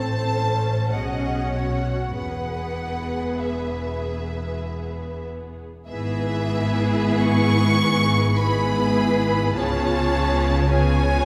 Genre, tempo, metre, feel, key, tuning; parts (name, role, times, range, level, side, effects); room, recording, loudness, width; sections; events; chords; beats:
classical, slow romantic movement for string orchestra; 43-55 BPM; 3/4; rubato; E major; A4 = 441 Hz
warm studio violin section; melody; 0.0-11.2 s; E5 to C#6; -30 LUFS; equal
dark chamber violin section; second line; 0.0-11.2 s; G#4 to D#5; -30 LUFS; equal
rich symphonic viola section; accompaniment; 0.0-11.2 s; B3 to A4; -29 LUFS; equal
rich chamber cello section; bass; 0.0-11.2 s; E2 to C#3; -29 LUFS; equal
rich studio double bass section; bass; 0.0-11.2 s; E1 to C#2; -28 LUFS; equal
wet scoring stage reverb, RT60 1.5 s; heard from further back in the room; -22 LUFS; mono
0.0-5.9 A section; 5.9-11.2 B section
0.0 Am; 0.9 B; 2.1 E; 5.9 E/G#; 9.5 C#7
0.94 | 2.14 3.41 4.65 | 5.89 7.21 8.39 | 9.54 10.71